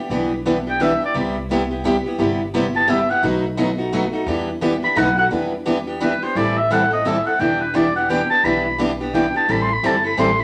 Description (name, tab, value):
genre	acoustic string swing (jazz manouche)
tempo	173 BPM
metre	3/4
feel	swing 61% on 8ths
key	E minor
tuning	A4 = 444 Hz
part	picked steel-string acoustic guitar	accompaniment	0.0-10.4 s	B2 to A4	-25 LUFS	equal	none
part	picked plugged-in steel-string acoustic guitar	accompaniment	0.1-10.3 s	B2 to B4	-25 LUFS	equal	none
part	upright bass	bass	0.1-10.4 s	E1 to E2	-32 LUFS	equal	none
part	warm oboe	melody	0.7-10.4 s	B4 to C6	-21 LUFS	equal	none
room	wet large studio reverb, RT60 0.9 s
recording	none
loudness	-19 LUFS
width	mono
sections	0.0-5.3 A section; 5.3-10.4 A section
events	oboe solo 0.0-10.4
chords	0.0 Em7; 1.1 Cmaj7; 3.2 B7; 4.3 Em7; 5.0 B7; 5.3 Em7; 6.4 Am7; 7.4 Em7; 9.5 Am7